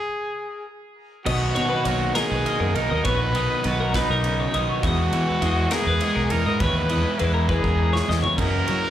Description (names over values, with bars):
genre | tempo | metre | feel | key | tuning
math rock and midwest emo | 68 BPM (dotted quarters) | 6/8 | straight | unclear | A4 = 440 Hz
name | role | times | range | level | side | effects
clear trumpet | melody | 0.0-8.9 s | D#4 to B4 | -26 LUFS | equal | slapback echo, tape echo
twelve-string electric guitar | accompaniment | 1.3-8.9 s | E2 to D#4 | -30 LUFS | right 5 dB | slapback echo
twelve-string electric guitar | arpeggios | 1.3-8.9 s | A#4 to D#5 | -28 LUFS | left 4 dB | harmonic tremolo
overdriven semi-hollow guitar | riff | 1.3-8.9 s | F#2 to E4 | -28 LUFS | equal | slapback echo
fuzz fingered electric bass | bass | 1.3-8.8 s | A#1 to F#3 | -24 LUFS | equal | overdrive
modern studio drum kit | drums | 1.3-8.8 s | crash cymbal, kick drum, ride cymbal, snare drum, toms | -30 LUFS | equal | none
room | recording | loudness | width
small room ambience | live gig heard through the venue's PA, club reverb | -20 LUFS | side -11 dB against mid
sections
0.0-1.3 A section; 1.3-8.9 B section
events
stop 0.0-1.3; drum fill 7.5-8.4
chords
0.0 N.C.; 1.3 Bmaj7; 4.8 Emaj9; 8.4 F#7sus4